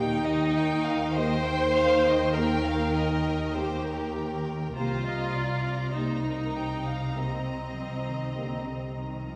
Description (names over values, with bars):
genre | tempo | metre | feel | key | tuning
cinematic, suspense film score | 100 BPM | 4/4 | straight | unclear | A4 = 440 Hz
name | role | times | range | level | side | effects
rich chamber violin section | melody | 0.0-9.3 s | G5 to Bb5 | -42 LUFS | equal | none
rich chamber violin section | second line | 0.0-9.3 s | Bb4 to G5 | -38 LUFS | equal | none
clear chamber viola section | accompaniment | 0.0-9.3 s | C4 to C5 | -31 LUFS | equal | none
mellow French horn section | sustained chords | 0.0-8.6 s | Bb3 to G4 | -37 LUFS | equal | none
clear chamber double bass section | bass | 0.0-9.3 s | C2 to Eb2 | -34 LUFS | equal | none
rich chamber cello section | bass | 0.0-9.4 s | C3 to F3 | -36 LUFS | equal | none
room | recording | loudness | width
wet scoring stage reverb, RT60 1.6 s | heard from further back in the room | -28 LUFS | mono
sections
0.0-9.4 A section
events
none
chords
0.0 Eb; 4.8 Cm7